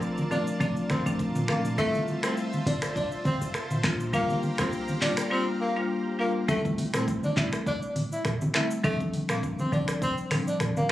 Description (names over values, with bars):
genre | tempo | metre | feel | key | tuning
afrobeats | 102 BPM | 4/4 | swing 55% on 16ths | F major | A4 = 440 Hz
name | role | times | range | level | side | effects
marimba with hard mallets | accompaniment | 0.0-10.9 s | F3 to F4 | -30 LUFS | left 2 dB | none
lush unison pad | sustained chords | 0.0-6.5 s | F4 to Bb5 | -36 LUFS | right 1 dB | chorus
short 808-style bass | bass | 0.0-10.1 s | F1 to C2 | -34 LUFS | equal | none
afro-pop drum kit | drums | 0.0-10.9 s | finger snaps, handclaps, hi-hat, kick drum, rim click, shaker, toms | -30 LUFS | equal | none
congas | percussion | 0.2-10.9 s | none | -31 LUFS | right 1 dB | none
warm tenor saxophone | melody | 0.3-10.9 s | A3 to E4 | -31 LUFS | equal | tape echo
room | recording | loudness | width
light reverb | recorded on a phone in the room, club reverb, compression | -25 LUFS | side -14 dB against mid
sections
0.0-6.5 A section; 6.5-10.9 B section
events
none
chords
0.0 Bbmaj7; 1.8 Fmaj7; 3.8 C7sus4; 6.5 Fmaj7; 8.8 Bb6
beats
0.02 0.60 1.19 | 1.78 2.37 2.96 3.55 | 4.13 4.72 5.31 5.90 | 6.49 7.08 7.66 8.25 | 8.84 9.43 10.02 10.61